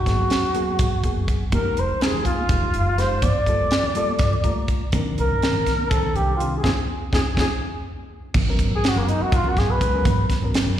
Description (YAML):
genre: electric jazz fusion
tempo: 246 BPM (eighths)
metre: 7/8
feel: straight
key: F dorian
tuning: A4 = 440 Hz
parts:
  - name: trumpet with bucket mute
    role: melody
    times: 0.0-10.2 s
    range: A#3 to D5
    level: -24 LUFS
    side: equal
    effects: slapback echo
  - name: reed electric piano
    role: accompaniment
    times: 0.1-10.8 s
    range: Eb3 to Bb5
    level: -29 LUFS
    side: left 2 dB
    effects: slapback echo
  - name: upright bass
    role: bass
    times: 0.1-10.8 s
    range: F1 to A2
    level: -24 LUFS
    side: equal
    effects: none
  - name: tight funk drum kit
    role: drums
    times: 0.1-10.7 s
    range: crash cymbal, hi-hat, kick drum, snare drum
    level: -23 LUFS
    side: equal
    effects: none
  - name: congas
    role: percussion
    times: 1.5-10.8 s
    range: none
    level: -31 LUFS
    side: right 3 dB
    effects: slapback echo
room: light reverb, studio reverb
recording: live gig heard through the venue's PA, recital hall reverb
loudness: -19 LUFS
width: side -11 dB against mid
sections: 0.0-8.4 A section; 8.4-10.8 B section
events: reed electric piano fill 4.2-4.9; band accent 6.6-8.4; drum fill 7.6-8.4; muted trumpet solo 8.4-10.8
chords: 0.0 Abm9; 1.5 Fm9; 3.2 Gm9; 4.9 Cm9; 6.6 F7(no3); 7.6 N.C.; 8.4 G#m11